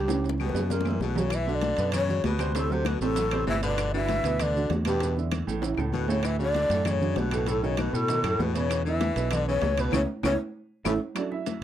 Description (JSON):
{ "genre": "Afro-Cuban jazz", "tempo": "195 BPM", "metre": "4/4", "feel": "straight", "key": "B minor", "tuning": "A4 = 440 Hz", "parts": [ { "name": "breathy long shakuhachi", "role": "melody", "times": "0.0-11.0 s", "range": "G4 to E5", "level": "-29 LUFS", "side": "left 1 dB", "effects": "none" }, { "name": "edgy baritone saxophone", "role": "second line", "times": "0.0-10.9 s", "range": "G2 to E3", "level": "-34 LUFS", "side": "left 9 dB", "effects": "none" }, { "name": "warm upright piano", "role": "accompaniment", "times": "0.0-11.6 s", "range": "A2 to E5", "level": "-31 LUFS", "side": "right 5 dB", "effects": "none" }, { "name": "modern bright fingered electric bass", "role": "bass", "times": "0.0-11.0 s", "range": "G1 to B2", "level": "-29 LUFS", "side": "equal", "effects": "none" }, { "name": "bongos", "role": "percussion", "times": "0.1-11.6 s", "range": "none", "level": "-37 LUFS", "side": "left 9 dB", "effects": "none" }, { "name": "congas", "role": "percussion", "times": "0.1-11.6 s", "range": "none", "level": "-35 LUFS", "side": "equal", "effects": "none" }, { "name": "maracas", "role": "percussion", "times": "0.1-11.6 s", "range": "none", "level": "-43 LUFS", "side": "right 14 dB", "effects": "none" }, { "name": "timbales", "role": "percussion", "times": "0.1-11.6 s", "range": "none", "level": "-36 LUFS", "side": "right 6 dB", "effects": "none" }, { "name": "claves", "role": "percussion", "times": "0.4-11.3 s", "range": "none", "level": "-38 LUFS", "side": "left 24 dB", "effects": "none" } ], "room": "little or no reverb", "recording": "dry, close 1970s-style studio recording", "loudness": "-24 LUFS", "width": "side -11 dB against mid", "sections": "0.0-1.3 A section; 1.3-11.2 B section", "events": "drum fill 0.1-1.3, 5.6-6.2, 10.7-11.2; band accent 9.9-11.2", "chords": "0.1 Gmaj7#11/C#; 0.7 F#7; 1.3 Bm; 2.6 D7; 3.8 Gmaj7; 5.0 E5; 5.6 A; 6.2 D6; 7.5 B7; 8.7 E5; 9.9 C#m7; 10.5 A", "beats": "| 0.09 0.40 0.71 1.01 | 1.32 1.63 1.94 2.25 | 2.55 2.86 3.17 3.48 | 3.78 4.09 4.40 4.71 | 5.01 5.32 5.63 5.94 | 6.24 6.55 6.86 7.17 | 7.47 7.78 8.09 8.40 | 8.70 9.01 9.32 9.63 | 9.93 10.24 10.55 10.86 | 11.16 11.47" }